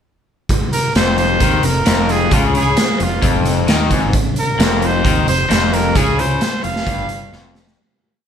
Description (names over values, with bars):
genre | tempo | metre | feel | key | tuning
indie rock | 132 BPM | 4/4 | straight | F minor | A4 = 438 Hz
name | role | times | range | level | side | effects
raw garage drum kit | drums | 0.5-7.8 s | hi-hat, kick drum, snare drum | -17 LUFS | right 1 dB | none
bright trumpet | melody | 0.7-7.6 s | F4 to F5 | -19 LUFS | right 1 dB | none
crunchy overdriven guitar | riff | 1.0-7.8 s | F2 to Eb3 | -19 LUFS | left 5 dB | none
fuzz fingered electric bass | bass | 1.0-7.8 s | F1 to Eb2 | -21 LUFS | equal | overdrive
room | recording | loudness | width
light reverb | band playing live in one room | -13 LUFS | side -8 dB against mid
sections
0.5-7.8 verse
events
fade-out 6.0-7.8; drum fill 7.3-7.8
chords
0.5 F5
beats
| 0.49 0.95 1.41 1.86 | 2.32 2.77 3.23 3.68 | 4.14 4.59 5.05 5.50 | 5.96 6.41 6.87 7.33